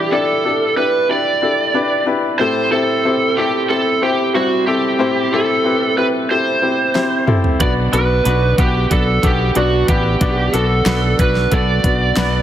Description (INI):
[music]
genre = piano-driven pop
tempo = 92 BPM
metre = 4/4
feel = straight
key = unclear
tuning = A4 = 440 Hz
[part]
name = lead guitar through a small cranked amp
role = melody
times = 0.0-12.4 s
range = F#4 to D5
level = -17 LUFS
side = right 3 dB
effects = overdrive
[part]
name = clear upright piano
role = accompaniment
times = 0.0-12.4 s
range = A2 to F#5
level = -18 LUFS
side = left 3 dB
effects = none
[part]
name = pop drum kit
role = drums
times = 7.0-12.3 s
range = hi-hat, kick drum, snare drum, toms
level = -18 LUFS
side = equal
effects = none
[part]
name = direct-recorded clean electric guitar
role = riff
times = 7.6-12.4 s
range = B2 to F#4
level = -25 LUFS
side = right 6 dB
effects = wide subtle chorus
[part]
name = fingered electric bass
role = bass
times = 7.6-12.4 s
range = A1 to B1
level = -18 LUFS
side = equal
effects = none
[sound]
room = light reverb, digital ambience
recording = heavily compressed radio sound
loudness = -13 LUFS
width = side -11 dB against mid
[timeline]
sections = 0.0-12.4 A section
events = drum fill 7.0-7.6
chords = 0.0 Em7; 2.4 Am7; 7.6 Bm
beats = 0.44 1.09 1.75 | 2.40 3.05 3.70 4.35 | 5.00 5.66 6.31 6.96 | 7.61 8.26 8.91 9.57 | 10.22 10.87 11.52 12.17